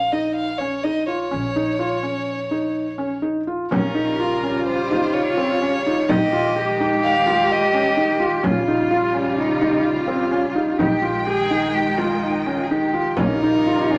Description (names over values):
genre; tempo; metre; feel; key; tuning
contemporary instrumental, chamber music in an uneven meter; 127 BPM; 5/4; straight; unclear; A4 = 440 Hz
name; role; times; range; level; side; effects
dark violin; melody; 0.0-8.2, 13.2-14.0 s; Bb4 to F5; -26 LUFS; equal; none
upright bass; bass; 0.0-14.0 s; Bb1; -36 LUFS; equal; none
felt-muted upright piano; arpeggios; 0.1-14.0 s; C4 to G4; -25 LUFS; equal; none
rich cello; second line; 3.7-14.0 s; Db4 to Ab4; -25 LUFS; equal; none
warm studio string section; sustained chords; 3.7-14.0 s; Db3 to G5; -28 LUFS; equal; none
frame drum; percussion; 3.7-13.8 s; none; -26 LUFS; equal; none
room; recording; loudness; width
wet studio reverb, RT60 0.7 s; none; -20 LUFS; mono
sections
0.0-3.7 A section; 3.7-14.0 B section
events
none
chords
0.0 Bbm; 3.7 Eb9/Bb; 6.1 Fm9/Bb; 8.4 Eb9/Bb; 10.8 Fm9/Bb; 13.2 Eb9/Bb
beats
0.37 0.85 | 1.32 1.80 2.27 2.75 3.23 | 3.72 4.20 4.67 5.14 5.62 | 6.09 6.56 7.03 7.50 7.97 | 8.44 8.91 9.38 9.85 10.32 | 10.79 11.27 11.74 12.22 12.70 | 13.18 13.66